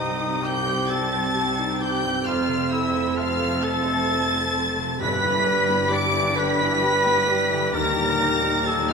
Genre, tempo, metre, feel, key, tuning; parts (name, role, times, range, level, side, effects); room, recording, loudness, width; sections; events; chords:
cinematic; 44 BPM (dotted quarters); 6/8; rubato; G mixolydian; A4 = 435 Hz
rich studio violin section; melody; 0.0-8.9 s; Eb6 to D7; -26 LUFS; left 1 dB
warm clarinet; second line; 0.0-8.9 s; Eb4 to D5; -29 LUFS; equal
warm oboe; second line; 0.0-8.9 s; Eb4 to D5; -28 LUFS; left 1 dB
warm studio violin section; second line; 0.0-8.9 s; Eb5 to D6; -29 LUFS; left 1 dB
felt-muted upright piano; accompaniment; 0.0-8.9 s; C2 to Eb5; -32 LUFS; left 2 dB
warm studio viola section; accompaniment; 0.0-8.9 s; D3 to A4; -31 LUFS; left 1 dB
dark French horn section; sustained chords; 0.0-8.9 s; G3 to Eb4; -28 LUFS; right 2 dB
concert harp; arpeggios; 0.0-8.9 s; F2 to Eb5; -36 LUFS; left 6 dB
rich studio cello section; bass; 0.0-8.9 s; C2 to G2; -33 LUFS; right 2 dB
warm studio double bass section; bass; 0.0-8.9 s; F1 to Eb2; -34 LUFS; right 3 dB
timpani; percussion; 5.0-6.3 s; G2; -36 LUFS; right 3 dB
wet scoring stage reverb, RT60 2.0 s; minimal, uncompressed stereo recording; -20 LUFS; side -5 dB against mid
0.0-8.9 A section
0.0 Cm; 2.3 F; 5.0 G6; 7.7 Eb